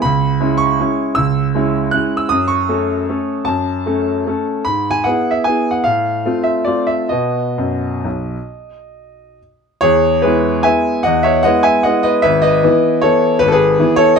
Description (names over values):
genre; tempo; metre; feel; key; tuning
classical, piano waltz; 126-166 BPM; 3/4; rubato; E major; A4 = 438 Hz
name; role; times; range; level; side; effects
bright grand piano; solo; 0.0-14.2 s; G#1 to F#6; -13 LUFS; equal; none
room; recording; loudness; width
light reverb; dark, warm production; -13 LUFS; side -5 dB against mid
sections
0.0-9.8 A section; 9.8-14.2 B section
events
none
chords
0.0 C#m7; 2.3 F#m; 4.7 E/G#; 5.9 F/A; 7.1 B; 9.8 E; 12.2 E/G#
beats
| 0.03 0.40 0.79 | 1.17 1.54 1.93 | 2.31 2.69 3.08 | 3.47 3.85 4.26 | 4.66 5.06 5.47 | 5.86 6.25 6.67 | 7.11 7.58 8.05 | 8.49 8.93 9.38 | 9.82 10.24 10.65 | 11.05 11.44 11.84 | 12.24 12.63 13.03 | 13.41 13.78 14.18